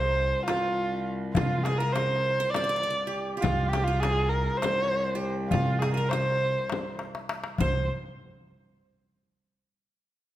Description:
Turkish makam ensemble; 202 BPM (eighths); 7/8; straight; C makam ussak; A4 = 444 Hz
dark kamancheh; melody; 0.0-7.9 s; F4 to D5-30c; -28 LUFS; right 1 dB
qanun; second line; 0.0-7.9 s; F4 to D5-30c; -35 LUFS; right 4 dB
upright bass; bass; 0.0-7.9 s; C2 to C3; -29 LUFS; equal
warm cello; drone; 0.0-7.7 s; C2; -36 LUFS; left 2 dB
darbuka; percussion; 0.5-7.9 s; -34 LUFS; left 2 dB
frame drum; percussion; 0.5-7.9 s; -35 LUFS; left 4 dB
moderate recital hall reverb, RT60 1.6 s; -25 LUFS; side -13 dB against mid
0.0-7.6 A section; 7.6-9.7 B section
drum fill 7.0-7.6

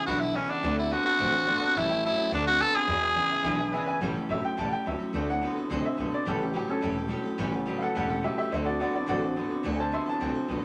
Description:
rock; 213 BPM; 4/4; straight; A mixolydian; A4 = 439 Hz
raspy tenor saxophone; melody; 0.0-3.9 s; C#4 to A4; -27 LUFS; equal
bright upright piano; accompaniment; 0.0-10.6 s; C#3 to C6; -35 LUFS; equal
picked steel-string acoustic guitar; accompaniment; 0.0-10.6 s; A2 to B4; -37 LUFS; equal
electric guitar through a small old amp; riff; 0.0-10.6 s; E2 to C4; -35 LUFS; equal
upright bass; bass; 0.1-10.6 s; E1 to E2; -38 LUFS; equal
moderate studio ambience, RT60 0.5 s; -28 LUFS; mono
0.0-4.0 A section; 4.0-10.6 B section
upright piano solo 4.0-10.6
0.0 E7; 0.6 D7; 1.8 A7; 2.3 D7; 2.9 E7; 4.0 A7; 5.1 D7; 6.3 A7; 8.5 D7

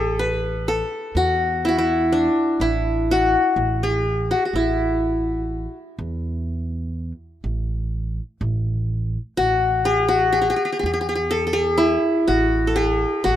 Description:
Arabic maqam ensemble; 124 BPM (eighths); 10/8; straight; A maqam rast; A4 = 442 Hz
qanun; melody; 0.0-13.4 s; D4 to B4; -19 LUFS; left 1 dB
upright bass; bass; 0.0-13.4 s; A1 to E2; -25 LUFS; right 1 dB
light reverb, small room ambience; rough home demo mix; -19 LUFS; side -11 dB against mid
0.0-13.4 A section

